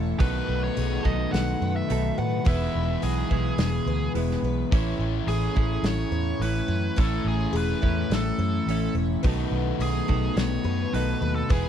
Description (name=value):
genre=rock, shoegaze and dream pop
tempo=106 BPM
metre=4/4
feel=straight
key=A major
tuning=A4 = 440 Hz
part: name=picked twelve-string acoustic guitar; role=arpeggios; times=0.0-11.7 s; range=F#4 to C#5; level=-36 LUFS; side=left 9 dB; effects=analog chorus, digital delay
part: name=crunchy overdriven guitar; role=riff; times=0.0-11.7 s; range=E2 to F#4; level=-30 LUFS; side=left 14 dB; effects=lush chorus
part: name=direct-recorded clean electric guitar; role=riff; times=0.0-11.7 s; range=A2 to A4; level=-31 LUFS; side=right 14 dB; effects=reverse reverb
part: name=vintage muted fingered electric bass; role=bass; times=0.0-11.7 s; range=E1 to A2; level=-27 LUFS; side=equal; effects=none
part: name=biting lead guitar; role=melody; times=0.2-11.7 s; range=G#4 to F#5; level=-33 LUFS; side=right 2 dB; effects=overdrive, digital delay
part: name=loose indie drum kit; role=drums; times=0.2-11.6 s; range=hi-hat, kick drum, snare drum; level=-26 LUFS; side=equal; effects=none
room=little or no reverb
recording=dark, warm production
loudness=-23 LUFS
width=side -9 dB against mid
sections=0.0-11.7 A section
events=none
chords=0.2 B7; 2.5 E; 4.7 Amaj7; 9.2 B7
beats=| 0.20 0.77 1.33 1.90 | 2.46 3.03 3.59 4.16 | 4.72 5.29 5.85 6.42 | 6.98 7.55 8.11 8.68 | 9.24 9.81 10.37 10.93 | 11.50